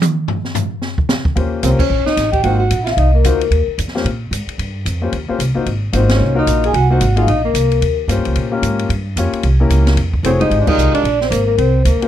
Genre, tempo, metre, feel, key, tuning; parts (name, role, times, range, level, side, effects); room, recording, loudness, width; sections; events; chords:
jazz, small-group swing and bop; 223 BPM; 4/4; swing 60% on 8ths; Eb mixolydian; A4 = 437 Hz
open jazz drum kit; drums; 0.0-12.1 s; crash cymbal, hi-hat, kick drum, ride cymbal, snare drum, toms; -22 LUFS; equal
warm grand piano; accompaniment; 1.4-12.1 s; Ab3 to Db5; -20 LUFS; left 5 dB
upright bass; bass; 1.4-12.0 s; F1 to Bb2; -16 LUFS; right 1 dB
vibraphone with soft mallets; melody; 1.6-3.6, 6.0-7.9, 10.3-12.1 s; Bb4 to Ab5; -18 LUFS; left 4 dB
breathy alto saxophone; second line; 1.6-3.6, 6.0-7.9, 10.2-12.1 s; Bb3 to Ab4; -21 LUFS; right 7 dB
little or no reverb; close, detailed microphones; -13 LUFS; side -11 dB against mid
0.0-1.4 A section; 1.4-12.1 B section
drum solo 0.0-1.4; band accent 1.8, 6.1, 10.6
0.0 N.C.; 1.4 Eb13; 2.4 Ab13; 3.5 Eb13; 5.7 Ab13; 7.8 Eb13; 8.9 Gm7b5; 9.4 C7b9; 10.0 Fm7; 11.1 Bb9